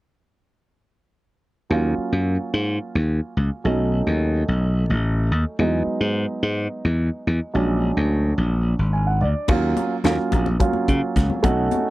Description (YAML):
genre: electric jazz fusion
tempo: 216 BPM (eighths)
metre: 7/8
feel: straight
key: Eb minor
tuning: A4 = 440 Hz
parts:
  - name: dark baby grand piano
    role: accompaniment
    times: 1.7-11.9 s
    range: Gb3 to Ab5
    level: -24 LUFS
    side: right 2 dB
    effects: none
  - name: slap bass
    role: bass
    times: 1.7-11.7 s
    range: Ab1 to Db3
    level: -20 LUFS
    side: equal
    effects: none
  - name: crisp fusion drum kit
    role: drums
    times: 9.5-11.8 s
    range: crash cymbal, hi-hat, kick drum, snare drum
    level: -22 LUFS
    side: equal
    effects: none
  - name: congas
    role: percussion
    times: 9.5-11.8 s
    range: none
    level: -28 LUFS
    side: left 6 dB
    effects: none
room: little or no reverb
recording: dry, close 1970s-style studio recording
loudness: -19 LUFS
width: side -18 dB against mid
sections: 1.7-9.5 A section; 9.5-11.9 B section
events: grand piano fill 8.7-9.5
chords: 1.7 Ebm9; 3.7 B7; 5.6 Emaj9; 7.5 Bb7alt; 9.5 Ebm9